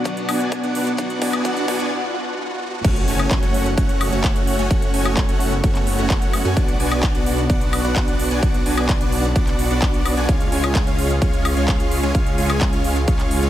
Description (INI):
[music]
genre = EDM, festival progressive house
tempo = 129 BPM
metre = 4/4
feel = straight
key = F# minor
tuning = A4 = 440 Hz
[part]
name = picked steel-string acoustic guitar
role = accompaniment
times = 0.0-1.9 s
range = B2 to F#4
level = -27 LUFS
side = left 2 dB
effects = vintage 12-bit sampler grit, sidechain pumping, digital delay
[part]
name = lush unison pad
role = sustained chords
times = 0.0-13.5 s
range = B2 to F#5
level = -29 LUFS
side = equal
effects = chorus, phaser, sidechain pumping
[part]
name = riser and impact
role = sound effects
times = 0.2-4.7 s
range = none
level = -30 LUFS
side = equal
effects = none
[part]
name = supersaw chords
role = riff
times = 0.1-13.5 s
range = G#3 to G#5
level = -22 LUFS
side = equal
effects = sidechain pumping, low-pass filter, digital delay
[part]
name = big-room dance drum kit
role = drums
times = 0.1-13.5 s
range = crash cymbal, handclaps, hi-hat, woodblock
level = -28 LUFS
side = left 1 dB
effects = none
[part]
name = electronic kick drum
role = drums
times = 0.1-13.2 s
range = none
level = -20 LUFS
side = equal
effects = overdrive, high-pass filter on kick
[part]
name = wide detuned saw bass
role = bass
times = 2.8-13.5 s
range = F#1 to F#2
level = -23 LUFS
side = equal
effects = chorus, sidechain pumping
[sound]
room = light reverb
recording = high-pass filter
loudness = -17 LUFS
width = side -12 dB against mid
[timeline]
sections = 0.0-2.8 A section; 2.8-13.5 B section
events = build-up 0.0-2.8; drum fill 0.0-1.9; filter sweep on analog synth pad 0.0-2.8; riser 0.2-2.8; break 1.9-2.8; drop 2.8-13.5; impact 2.8-4.7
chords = 0.0 Bm; 2.8 F#m; 6.6 Bm; 10.3 C#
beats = 0.06 0.52 | 0.99 1.45 1.92 2.38 | 2.85 3.31 3.78 4.24 | 4.71 5.17 5.64 6.10 | 6.57 7.03 7.50 7.96 | 8.43 8.89 9.36 9.82 | 10.29 10.75 11.22 11.68 | 12.15 12.61 13.08